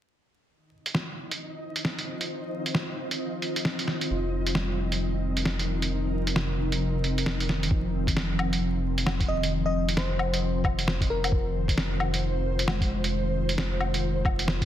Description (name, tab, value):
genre	future garage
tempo	133 BPM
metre	4/4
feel	swing 61% on 16ths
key	unclear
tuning	A4 = 442 Hz
part	ethereal airy pad	sustained chords	1.3-14.7 s	Eb3 to C5	-32 LUFS	equal	ensemble chorus, built-in reverb, sidechain pumping
part	flickering grainy texture	texture	1.1-7.7 s	Eb4 to Eb5	-41 LUFS	equal	built-in reverb
part	lo-fi sampler-style drum kit	drums	0.9-14.7 s	hi-hat, snare drum, woodblock	-29 LUFS	equal	none
part	bright tine electric piano	accompaniment	4.1-14.7 s	C3 to F4	-35 LUFS	equal	fast stereo tremolo, sidechain pumping, low-pass filter, digital delay
part	warm sub bass	bass	4.1-14.7 s	F1	-29 LUFS	equal	sidechain pumping
part	electronic kick drum	drums	7.7-14.7 s	none	-26 LUFS	equal	overdrive
part	bell-like FM electric piano	melody	9.3-11.5 s	Bb4 to Eb5	-32 LUFS	left 2 dB	chorus, tape echo
room	light reverb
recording	dense, heavily limited modern master, vinyl crackle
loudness	-25 LUFS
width	side -11 dB against mid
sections	0.5-7.7 A section; 7.7-14.7 B section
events	filter sweep on tine electric piano 7.7-14.7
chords	0.5 F5; 7.7 Fm7